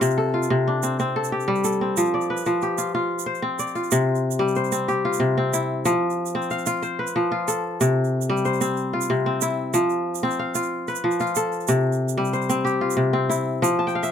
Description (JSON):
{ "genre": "west african traditional, West African string and xylophone music", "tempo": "124 BPM (dotted quarters)", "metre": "12/8", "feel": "straight", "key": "unclear", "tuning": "A4 = 440 Hz", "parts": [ { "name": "kora", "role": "arpeggios", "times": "0.0-14.1 s", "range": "C3 to A5", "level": "-21 LUFS", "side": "left 1 dB", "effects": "none" }, { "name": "tube shaker", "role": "percussion", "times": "0.0-14.1 s", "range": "none", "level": "-30 LUFS", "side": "right 12 dB", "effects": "none" } ], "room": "light reverb", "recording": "close, detailed microphones", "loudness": "-20 LUFS", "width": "side -8 dB against mid", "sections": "0.0-3.9 A section; 3.9-14.1 B section", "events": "kora fill 13.8-14.1", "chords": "0.0 C5; 2.0 F; 3.9 C; 5.9 F; 7.8 C; 9.7 F; 11.7 C" }